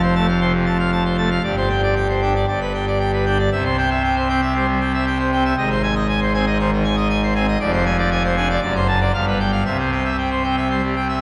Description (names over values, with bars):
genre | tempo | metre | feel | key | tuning
classical, organ toccata | 117 BPM | 4/4 | straight | C major | A4 = 440 Hz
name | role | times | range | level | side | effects
pipe organ, full organ | solo | 0.0-11.2 s | F1 to A5 | -19 LUFS | equal | none
room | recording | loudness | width
wet church reverb, RT60 2.6 s | none | -19 LUFS | mono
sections
0.0-11.2 A section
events
none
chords
0.0 F; 1.4 Gsus4; 2.5 G; 3.5 C; 5.6 Ab; 7.6 Dm7b5/F; 8.6 D7/F#; 9.1 G7; 9.7 C